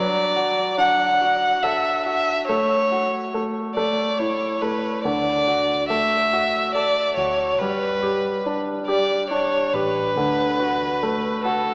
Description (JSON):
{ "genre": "six-eight pop ballad", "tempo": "47 BPM (dotted quarters)", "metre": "6/8", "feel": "straight", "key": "D major", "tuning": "A4 = 441 Hz", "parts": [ { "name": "rich violin", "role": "melody", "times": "0.0-11.7 s", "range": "A4 to F#5", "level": "-20 LUFS", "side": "equal", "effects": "none" }, { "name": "clear baby grand piano", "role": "accompaniment", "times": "0.0-11.7 s", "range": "D3 to A4", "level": "-24 LUFS", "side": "equal", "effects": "none" }, { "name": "vintage muted fingered electric bass", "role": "bass", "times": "5.1-11.7 s", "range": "G1 to D2", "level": "-37 LUFS", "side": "equal", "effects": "none" } ], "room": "wet church reverb, RT60 3.1 s", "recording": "recorded in a church or concert hall, small speaker sound", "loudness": "-18 LUFS", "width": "side -36 dB against mid", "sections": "0.0-11.7 A section", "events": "none", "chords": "0.0 D/F#; 2.5 A6; 3.8 A5; 5.0 D; 7.6 Gadd9; 10.2 D" }